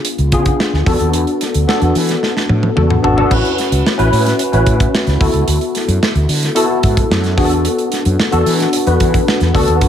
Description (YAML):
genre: polished 1980s jazz-funk pop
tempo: 111 BPM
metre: 4/4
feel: straight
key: A major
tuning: A4 = 440 Hz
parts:
  - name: tine electric piano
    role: accompaniment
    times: 0.0-9.9 s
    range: B3 to B4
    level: -15 LUFS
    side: left 2 dB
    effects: overdrive, ensemble chorus
  - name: modern studio drum kit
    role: drums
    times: 0.0-9.9 s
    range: crash cymbal, hi-hat, kick drum, snare drum, toms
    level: -17 LUFS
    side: right 1 dB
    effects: none
  - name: fretless electric bass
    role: bass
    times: 0.2-9.9 s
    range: G#1 to E3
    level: -15 LUFS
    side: equal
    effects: none
room: light reverb, small room ambience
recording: none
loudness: -12 LUFS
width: side -9 dB against mid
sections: 0.0-3.3 A section; 3.3-9.9 B section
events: drum fill 2.2-3.3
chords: 0.0 C#7b9; 0.9 E9sus4; 3.3 A69; 5.2 D6; 7.4 E9sus4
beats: 0.05 0.59 | 1.14 1.68 2.22 2.77 | 3.31 3.85 4.39 4.94 | 5.48 6.02 6.56 7.11 | 7.65 8.19 8.73 9.27 | 9.82